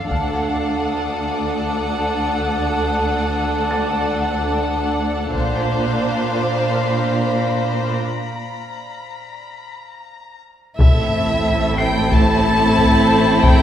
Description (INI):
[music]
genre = cinematic, suspense film score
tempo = 91 BPM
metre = 4/4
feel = straight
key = A phrygian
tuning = A4 = 440 Hz
[part]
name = rich chamber violin section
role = melody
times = 0.0-13.6 s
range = E5 to A5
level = -24 LUFS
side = left 1 dB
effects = none
[part]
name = rich chamber violin section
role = second line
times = 0.0-13.6 s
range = E4 to C5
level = -23 LUFS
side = equal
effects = none
[part]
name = warm studio viola section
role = accompaniment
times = 0.0-13.6 s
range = A3 to D4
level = -24 LUFS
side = equal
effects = none
[part]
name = drifting glass-harmonics texture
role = sustained chords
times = 0.0-13.6 s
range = D4 to F#5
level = -27 LUFS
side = left 1 dB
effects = chorus, built-in reverb
[part]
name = warm chamber cello section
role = bass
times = 0.0-13.6 s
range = D2 to Bb2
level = -22 LUFS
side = right 1 dB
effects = none
[part]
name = warm baby grand piano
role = texture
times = 0.0-13.6 s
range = A6 to C7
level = -33 LUFS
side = left 1 dB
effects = none
[part]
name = warm chamber double bass section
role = bass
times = 0.1-0.7, 5.3-6.0, 10.8-13.6 s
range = A1 to D2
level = -26 LUFS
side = right 2 dB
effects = none
[part]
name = taiko ensemble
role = drums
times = 0.1-1.4, 5.3-6.6, 10.8-13.6 s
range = none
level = -17 LUFS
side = left 1 dB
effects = none
[part]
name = rich chamber violin section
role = texture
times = 0.1-10.4 s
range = Bb5 to D#6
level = -34 LUFS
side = left 5 dB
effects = none
[part]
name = sub drop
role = sound effects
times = 10.9-13.4 s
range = none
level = -27 LUFS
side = equal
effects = none
[sound]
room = wet recital hall reverb, RT60 1.8 s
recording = recorded in a church or concert hall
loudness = -16 LUFS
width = side -10 dB against mid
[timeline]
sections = 0.0-10.8 A section; 10.8-13.6 A section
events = break 8.0-10.8; impact 10.8-13.4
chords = 0.1 D; 5.3 Bbadd9; 10.8 Am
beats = | 0.11 0.76 1.42 2.07 | 2.72 3.38 4.03 4.69 | 5.34 6.00 6.66 7.33 | 8.02 8.72 9.41 10.10 | 10.78 11.46 12.12 12.78 | 13.44